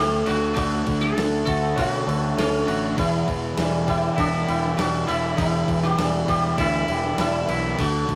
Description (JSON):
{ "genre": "rock, shoegaze and dream pop", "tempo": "100 BPM", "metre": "4/4", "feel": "straight", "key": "unclear", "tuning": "A4 = 440 Hz", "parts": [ { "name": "sitar", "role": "melody", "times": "0.0-8.2 s", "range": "C#4 to A4", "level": "-29 LUFS", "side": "equal", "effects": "none" }, { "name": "picked twelve-string acoustic guitar", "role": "arpeggios", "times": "0.0-8.2 s", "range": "F#3 to A4", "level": "-37 LUFS", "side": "equal", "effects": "none" }, { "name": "raw garage guitar", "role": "riff", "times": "0.0-8.2 s", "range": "E2 to F#4", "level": "-28 LUFS", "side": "equal", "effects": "overdrive" }, { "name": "raw garage guitar", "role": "riff", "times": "0.0-8.2 s", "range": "E2 to D4", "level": "-36 LUFS", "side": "equal", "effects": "none" }, { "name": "twangy electric guitar", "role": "riff", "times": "0.0-8.2 s", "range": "E2 to F#4", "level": "-30 LUFS", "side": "equal", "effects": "none" }, { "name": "growling fingered electric bass", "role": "bass", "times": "0.0-8.2 s", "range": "E1 to B2", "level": "-31 LUFS", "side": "equal", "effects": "overdrive" }, { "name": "crisp 8-bit digital drum machine", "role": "drums", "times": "0.3-8.2 s", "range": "crash cymbal, kick drum, snare drum", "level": "-32 LUFS", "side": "equal", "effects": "none" } ], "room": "wet studio reverb, RT60 0.5 s", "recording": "rough rehearsal-room recording", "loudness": "-22 LUFS", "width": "mono", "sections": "0.0-8.2 A section", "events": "none", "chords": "0.0 Dmaj7; 3.0 Em7" }